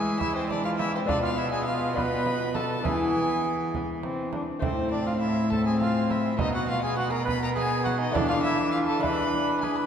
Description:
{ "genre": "classical, renaissance-style consort dance", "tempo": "68 BPM (dotted quarters)", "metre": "6/8", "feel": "straight", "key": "unclear", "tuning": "A4 = 439 Hz", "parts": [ { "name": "warm violin", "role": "melody", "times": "0.0-9.9 s", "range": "C5 to B5", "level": "-32 LUFS", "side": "left 3 dB", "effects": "none" }, { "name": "mellow cor anglais", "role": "second line", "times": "0.0-9.9 s", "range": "C4 to B4", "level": "-30 LUFS", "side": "right 3 dB", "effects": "none" }, { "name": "dark viola", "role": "accompaniment", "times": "0.0-9.9 s", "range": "G#3 to D4", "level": "-32 LUFS", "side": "left 1 dB", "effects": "none" }, { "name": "lute", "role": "accompaniment", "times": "0.0-9.9 s", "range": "A2 to F4", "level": "-34 LUFS", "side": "left 3 dB", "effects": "none" }, { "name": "rich cello", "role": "bass", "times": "0.0-9.9 s", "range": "A2 to E3", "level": "-29 LUFS", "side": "equal", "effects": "none" }, { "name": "frame drum", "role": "percussion", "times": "0.2-9.9 s", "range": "none", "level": "-34 LUFS", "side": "right 4 dB", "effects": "none" } ], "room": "wet church reverb, RT60 2.9 s", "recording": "dark, warm production", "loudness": "-24 LUFS", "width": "side -8 dB against mid", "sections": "0.0-9.9 A section", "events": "none", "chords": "0.0 E; 1.1 Bdim; 2.8 E; 4.6 Am; 6.4 B; 8.1 E7sus4; 9.0 E7" }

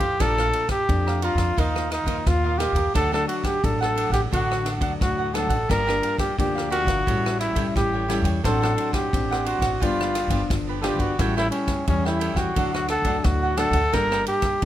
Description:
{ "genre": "samba and choro", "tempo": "87 BPM", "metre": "4/4", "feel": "straight", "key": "G minor", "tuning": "A4 = 443 Hz", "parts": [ { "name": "breathy trumpet", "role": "melody", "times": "0.0-14.6 s", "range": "C#4 to Bb4", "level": "-24 LUFS", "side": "equal", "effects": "plate reverb" }, { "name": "cavaquinho", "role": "accompaniment", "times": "0.0-14.7 s", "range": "D4 to Bb5", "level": "-30 LUFS", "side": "right 4 dB", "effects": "none" }, { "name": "nylon-string guitar", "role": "accompaniment", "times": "0.0-14.7 s", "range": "F2 to E4", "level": "-29 LUFS", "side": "left 4 dB", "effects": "none" }, { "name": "upright bass", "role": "bass", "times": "0.0-14.7 s", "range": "G1 to F2", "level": "-27 LUFS", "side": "equal", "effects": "none" }, { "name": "swinging big-band drum kit", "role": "drums", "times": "0.0-14.7 s", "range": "kick drum, ride cymbal, rim click", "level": "-27 LUFS", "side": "equal", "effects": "none" } ], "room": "moderate studio reverb, RT60 0.5 s", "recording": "none", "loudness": "-20 LUFS", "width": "side -12 dB against mid", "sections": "0.0-14.7 A section", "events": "none", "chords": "0.2 Bbmaj7; 1.6 Ebsus2; 2.9 D; 5.7 Gm7; 7.1 A7; 8.4 D7/A; 9.8 G7; 11.2 A7; 12.6 D; 13.9 Gmadd9" }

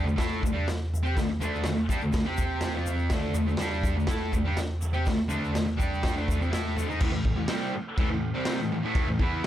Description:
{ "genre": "garage rock duo or trio", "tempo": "123 BPM", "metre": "4/4", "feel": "straight", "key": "unclear", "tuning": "A4 = 437 Hz", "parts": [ { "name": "fuzz guitar", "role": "riff", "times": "0.0-9.5 s", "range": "A2 to C5", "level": "-28 LUFS", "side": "equal", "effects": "distortion" }, { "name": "egg shaker", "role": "percussion", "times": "0.1-7.0 s", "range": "none", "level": "-47 LUFS", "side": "left 6 dB", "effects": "none" }, { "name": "raw garage drum kit", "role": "drums", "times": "0.2-9.5 s", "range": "crash cymbal, kick drum, snare drum, toms", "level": "-28 LUFS", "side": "equal", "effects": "none" } ], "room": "light reverb, small room ambience", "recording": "none", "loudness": "-25 LUFS", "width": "side -12 dB against mid", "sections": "0.0-7.0 A section; 7.0-9.5 B section", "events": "none", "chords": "0.0 D5; 2.3 C5; 2.8 D5; 7.0 A5" }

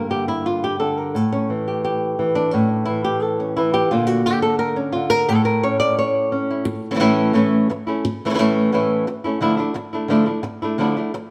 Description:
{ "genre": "flamenco", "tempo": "174 BPM", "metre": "4/4", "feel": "straight", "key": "A phrygian dominant", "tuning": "A4 = 440 Hz", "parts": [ { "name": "flamenco guitar", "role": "solo", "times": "0.0-11.2 s", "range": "G2 to D5", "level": "-20 LUFS", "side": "equal", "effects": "none" } ], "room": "moderate stone room reverb, RT60 1.5 s", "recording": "none", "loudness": "-20 LUFS", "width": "mono", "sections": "0.0-6.7 A section; 6.7-11.3 B section", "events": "nylon-string guitar solo 0.0-6.7", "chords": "0.0 Gm; 1.1 A5; 3.9 Bb; 5.3 A; 9.4 Dmadd9" }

